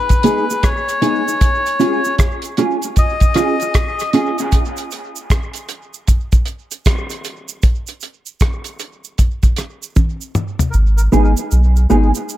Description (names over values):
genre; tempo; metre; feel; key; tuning
dub reggae; 77 BPM; 4/4; swing 63% on 16ths; G# dorian; A4 = 440 Hz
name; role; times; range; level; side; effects
melodica; melody; 0.0-4.1, 10.7 s; A#4 to D#5; -21 LUFS; left 3 dB; dub echo
damped 70s drum kit; drums; 0.1-10.7 s; hi-hat, kick drum, rim click, toms; -15 LUFS; equal; none
cabasa; percussion; 0.1-12.4 s; none; -31 LUFS; right 9 dB; dub echo
mellow electric guitar; accompaniment; 0.2-4.3, 11.1-12.1 s; B3 to G#4; -19 LUFS; right 4 dB; ensemble chorus, dub echo
reed electric piano; stabs; 0.2-2.0, 11.1-12.1 s; G#3 to G#4; -22 LUFS; left 6 dB; phaser, dub echo
soft dub sub bass; bass; 10.7-12.1 s; G#1 to B1; -12 LUFS; equal; none
room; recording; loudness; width
light reverb; echo-heavy mix; -14 LUFS; side -14 dB against mid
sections
0.0-10.7 A section; 10.7-12.4 B section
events
break 1.4-10.7; drum fill 10.0-10.7; part muted 10.7-12.4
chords
0.0 G#m; 1.4 C#; 4.5 N.C.; 10.7 G#m